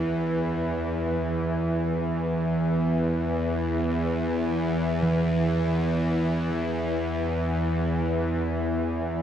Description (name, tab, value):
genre	dark ambient drone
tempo	free time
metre	none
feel	none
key	unclear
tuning	A4 = 440 Hz
part	gamelan-type bossed gongs	arpeggios	0.0-9.2 s	D2 to E3	-32 LUFS	right 2 dB	diffuse ambient delay
part	bowed-like drone	drone	0.0-9.2 s	E2 to E3	-24 LUFS	equal	built-in reverb
room	wet cathedral reverb, RT60 5.8 s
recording	cassette tape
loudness	-24 LUFS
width	side -9 dB against mid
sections	0.0-9.2 A section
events	none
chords	0.0 Dsus2